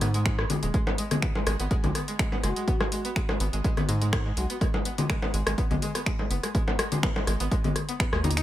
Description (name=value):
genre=minimal techno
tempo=124 BPM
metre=4/4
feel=swing 53% on 16ths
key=G# minor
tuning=A4 = 442 Hz
part: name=string-like resonator pluck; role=riff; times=0.0-8.4 s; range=G#3 to D#4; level=-34 LUFS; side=equal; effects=lush chorus, cassette tape, sidechain pumping, analog delay
part: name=rubbery square bass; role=bass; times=0.0-8.4 s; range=D#1 to G#2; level=-27 LUFS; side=equal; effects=sidechain pumping
part: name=house drum kit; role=drums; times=0.0-8.4 s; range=finger snaps, hi-hat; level=-33 LUFS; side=equal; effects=none
part: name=electronic rim click, congas and bongos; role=percussion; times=0.0-8.3 s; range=none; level=-29 LUFS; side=left 2 dB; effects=dub echo
part: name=electronic kick drum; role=drums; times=0.3-8.1 s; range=none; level=-28 LUFS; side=equal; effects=none
part: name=breathy flute-like synth lead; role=melody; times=2.4-4.6 s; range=F#4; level=-38 LUFS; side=left 2 dB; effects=analog chorus, dub echo
room=digital ambience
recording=echo-heavy mix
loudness=-24 LUFS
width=side -13 dB against mid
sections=0.0-8.4 A section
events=drum fill 8.2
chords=0.0 G#m